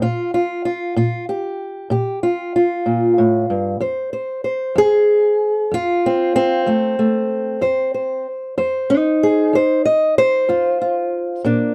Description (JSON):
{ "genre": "acoustic country blues, solo or duo", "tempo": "63 BPM (dotted quarters)", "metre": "12/8", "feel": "straight", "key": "unclear", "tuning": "A4 = 439 Hz", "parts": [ { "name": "fingerpicked old ladder-braced acoustic guitar", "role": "solo", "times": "0.0-11.7 s", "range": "F2 to Eb5", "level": "-18 LUFS", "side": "equal", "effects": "none" } ], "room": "little or no reverb", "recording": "dry, close 1970s-style studio recording", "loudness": "-18 LUFS", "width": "mono", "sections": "0.0-11.7 A section", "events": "none", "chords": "0.0 Bb5; 3.8 F5" }